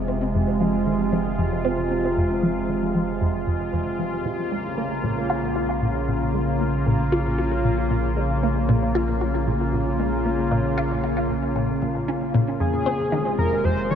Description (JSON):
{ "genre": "ambient, sequencer-driven space music", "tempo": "115 BPM", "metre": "4/4", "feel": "straight", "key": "unclear", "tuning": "A4 = 437 Hz", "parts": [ { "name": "evolving wavetable pad", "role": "sustained chords", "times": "0.0-14.0 s", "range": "C3 to F4", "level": "-24 LUFS", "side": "equal", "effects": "chorus, built-in reverb" }, { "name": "round analog bass", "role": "bass", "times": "0.0-14.0 s", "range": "F1 to Bb1", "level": "-29 LUFS", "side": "equal", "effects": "none" }, { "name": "resonant blip pluck", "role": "riff", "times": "0.1-14.0 s", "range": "F2 to F4", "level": "-25 LUFS", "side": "equal", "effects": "phaser, wide subtle chorus, vintage 12-bit sampler grit, analog delay" }, { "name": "pulse-width lead", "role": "melody", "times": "12.6-14.0 s", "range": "Ab4 to Db5", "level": "-24 LUFS", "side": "left 1 dB", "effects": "chorus, analog delay" } ], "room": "wet huge ambient reverb, RT60 7.8 s", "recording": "dreamy mix soaked in reverb", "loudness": "-20 LUFS", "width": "side -8 dB against mid", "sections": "0.0-14.0 A section", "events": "filter sweep on synth arpeggio sound 0.0-14.0", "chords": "0.0 Fm; 4.3 Bbm; 12.6 Fm", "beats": "| 0.08 0.60 1.12 1.64 | 2.17 2.69 3.21 3.73 | 4.25 4.77 5.30 5.82 | 6.34 6.86 7.38 7.91 | 8.43 8.95 9.47 9.99 | 10.51 11.04 11.56 12.08 | 12.60 13.12 13.64" }